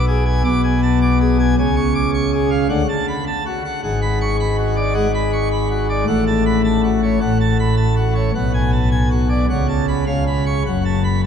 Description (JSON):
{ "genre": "classical, organ toccata", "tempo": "106 BPM", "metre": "4/4", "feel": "straight", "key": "F# minor", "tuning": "A4 = 440 Hz", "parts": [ { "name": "pipe organ, plenum", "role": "solo", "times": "0.0-11.3 s", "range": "F#1 to D6", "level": "-15 LUFS", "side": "equal", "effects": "none" } ], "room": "wet cathedral reverb, RT60 4.4 s", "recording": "dark, warm production", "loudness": "-15 LUFS", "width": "side -7 dB against mid", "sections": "0.0-11.3 A section", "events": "none", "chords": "0.0 G#dim/B; 1.6 C#; 2.7 D; 3.8 G#m7b5; 6.1 F#m/A; 8.3 G#m7b5/B; 9.5 F#m/C#; 10.1 C#7; 10.6 F#m" }